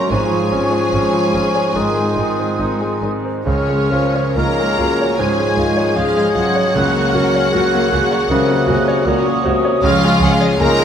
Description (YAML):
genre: classical, romantic movement for piano and orchestra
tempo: 64-79 BPM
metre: 4/4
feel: rubato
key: Db major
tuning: A4 = 439 Hz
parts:
  - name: bright grand piano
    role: melody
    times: 0.0-10.8 s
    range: Db2 to Db5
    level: -19 LUFS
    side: equal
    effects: none
  - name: rich studio violin section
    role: melody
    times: 0.0-10.8 s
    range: Db5 to Bb5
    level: -25 LUFS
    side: left 3 dB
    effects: none
  - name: bright large flute ensemble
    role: second line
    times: 0.0-10.8 s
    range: Db6 to Ab6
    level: -24 LUFS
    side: right 1 dB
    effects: none
  - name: mellow clarinet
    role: second line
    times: 0.0-10.8 s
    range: Gb4 to Bb4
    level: -27 LUFS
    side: left 2 dB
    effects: none
  - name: mellow cor anglais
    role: second line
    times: 0.0-10.8 s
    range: C5 to Eb5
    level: -27 LUFS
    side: right 2 dB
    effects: none
  - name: rich studio violin section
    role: second line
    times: 0.0-10.8 s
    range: Db4 to Bb4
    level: -25 LUFS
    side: left 3 dB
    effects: none
  - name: dark bassoon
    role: accompaniment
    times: 0.0-10.8 s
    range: Bb2 to Gb3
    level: -23 LUFS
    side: right 2 dB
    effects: none
  - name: rich studio viola section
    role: accompaniment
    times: 0.0-10.8 s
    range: Eb3 to Db4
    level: -25 LUFS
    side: right 1 dB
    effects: none
  - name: warm studio cello section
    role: bass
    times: 0.0-10.8 s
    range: Db3 to Bb3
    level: -24 LUFS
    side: right 1 dB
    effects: none
  - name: warm French horn section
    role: sustained chords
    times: 0.1-10.8 s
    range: F4 to Bb4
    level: -24 LUFS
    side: left 4 dB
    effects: none
  - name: rich studio double bass section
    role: bass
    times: 0.1-10.7 s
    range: Ab1 to Db2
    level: -24 LUFS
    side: right 2 dB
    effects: none
room: moderate scoring stage reverb, RT60 1.6 s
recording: none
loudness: -13 LUFS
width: side -8 dB against mid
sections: 0.0-10.8 A section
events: none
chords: 0.1 Db/Ab; 1.8 Ab; 3.5 Db; 6.8 Gb/Db; 9.8 Db